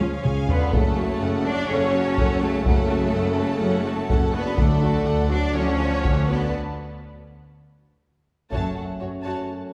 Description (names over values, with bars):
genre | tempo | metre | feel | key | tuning
cinematic, epic orchestral film score | 124 BPM | 4/4 | straight | unclear | A4 = 440 Hz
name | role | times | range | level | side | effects
warm symphonic violin section | melody | 0.0-9.5 s | A4 to A5 | -34 LUFS | equal | none
warm studio violin section | second line | 0.0-9.5 s | F#4 to A5 | -36 LUFS | equal | none
warm symphonic viola section | accompaniment | 0.0-9.5 s | C#4 to A4 | -33 LUFS | equal | none
warm French horn section | sustained chords | 0.0-9.7 s | C#3 to C#4 | -34 LUFS | equal | none
bright symphonic cello section | bass | 0.0-9.3 s | F#2 to D4 | -30 LUFS | equal | none
dark tuba | bass | 0.0-6.5 s | F#1 to D2 | -30 LUFS | equal | none
warm symphonic double bass section | bass | 0.0-8.7 s | F#1 to F#2 | -30 LUFS | equal | none
solo taiko drums | drums | 0.0-9.5 s | none | -26 LUFS | equal | none
warm trombone section | sustained chords | 0.7-9.7 s | F#2 to F#3 | -35 LUFS | equal | none
room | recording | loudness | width
wet scoring stage reverb, RT60 1.9 s | heard from further back in the room | -22 LUFS | mono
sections
0.0-8.5 A section; 8.5-9.7 B section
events
drum fill 0.0-0.7, 7.8-8.5; break 6.5-8.5; band accent 8.5-9.0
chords
0.0 C#; 0.7 F#m; 4.6 D; 8.5 F#m